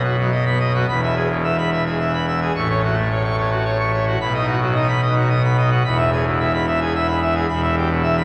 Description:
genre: classical, organ toccata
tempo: 109 BPM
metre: 3/4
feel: straight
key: E major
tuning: A4 = 440 Hz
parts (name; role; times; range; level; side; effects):
- pipe organ, full organ; solo; 0.0-8.2 s; E1 to C#6; -19 LUFS; equal; none
room: wet cathedral reverb, RT60 7.0 s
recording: none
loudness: -19 LUFS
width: mono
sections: 0.9-8.2 A section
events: none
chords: 0.0 B; 0.9 E; 2.5 F#m/A; 4.2 B; 5.8 E; 7.5 Em

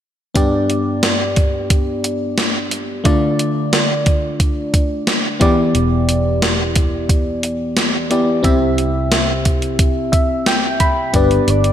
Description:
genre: 1980s-style pop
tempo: 89 BPM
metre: 4/4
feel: straight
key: G mixolydian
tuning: A4 = 440 Hz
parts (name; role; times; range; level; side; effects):
- FM electric piano; accompaniment; 0.3-11.7 s; G2 to B5; -17 LUFS; left 1 dB; chorus
- gated 80s digital drum machine; drums; 0.4-11.7 s; hi-hat, kick drum, snare drum; -16 LUFS; equal; gated reverb, gated reverb snare
- vintage muted fingered electric bass; bass; 5.7-11.7 s; E1 to C2; -21 LUFS; right 1 dB; none
- soft octave-layered synth lead; melody; 11.2-11.7 s; B4 to D5; -16 LUFS; left 4 dB; chorus, phaser
room: moderate lush hall reverb, RT60 2.4 s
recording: none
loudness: -14 LUFS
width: side -10 dB against mid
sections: 0.4-11.1 A section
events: FM electric piano fill 9.8-11.1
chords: 0.4 G; 3.1 Dm; 5.4 Em7; 8.4 C; 11.1 G

